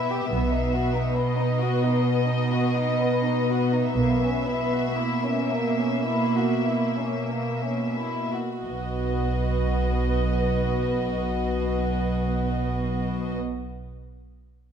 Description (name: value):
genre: classical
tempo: 42-70 BPM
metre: 4/4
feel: rubato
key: B major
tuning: A4 = 440 Hz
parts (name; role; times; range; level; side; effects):
- warm studio violin section; melody; 0.0-13.4 s; D#5 to E5; -32 LUFS; left 3 dB; none
- warm symphonic violin section; second line; 0.0-13.4 s; A#3 to G4; -30 LUFS; left 5 dB; none
- dark symphonic viola section; accompaniment; 0.0-13.4 s; A#3 to B3; -28 LUFS; right 1 dB; none
- rich symphonic cello section; bass; 0.0-13.4 s; B2; -28 LUFS; right 3 dB; none
- rich symphonic double bass section; bass; 0.3-13.4 s; B1; -28 LUFS; right 1 dB; none
room: moderate scoring stage reverb, RT60 1.6 s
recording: dark, warm production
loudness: -22 LUFS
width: side -8 dB against mid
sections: 0.0-8.7 A section; 8.7-13.6 B section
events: slowing down 0.0-8.7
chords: 0.3 B; 4.0 F#7/B (rootless); 8.7 B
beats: | 0.33 1.18 2.05 2.98 | 3.96 4.99 6.07 7.31 | 8.66 9.92 11.18 12.40